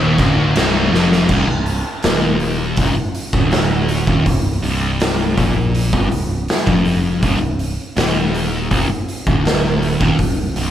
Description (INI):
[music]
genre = stoner and doom metal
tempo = 81 BPM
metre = 4/4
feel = straight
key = C minor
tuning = A4 = 443 Hz
[part]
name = fuzz guitar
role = riff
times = 0.0-10.7 s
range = C2 to Bb2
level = -18 LUFS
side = left 1 dB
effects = distortion
[part]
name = scooped high-gain guitar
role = riff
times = 0.0-1.3 s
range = C2 to F2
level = -22 LUFS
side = equal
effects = distortion
[part]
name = picked electric bass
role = bass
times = 0.0-10.7 s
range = C1 to Bb1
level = -22 LUFS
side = equal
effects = overdrive
[part]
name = oversized low-tuned drum kit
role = drums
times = 0.2-10.7 s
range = crash cymbal, hi-hat, kick drum, snare drum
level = -18 LUFS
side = equal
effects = none
[sound]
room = light reverb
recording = band playing live in one room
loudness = -14 LUFS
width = side -11 dB against mid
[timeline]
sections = 0.0-1.3 A section; 1.3-10.7 B section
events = drum fill 0.9-1.3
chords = 0.0 Cm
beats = 0.55 | 1.29 2.04 2.78 3.52 | 4.26 5.01 5.75 6.49 | 7.23 7.97 8.71 9.46 | 10.20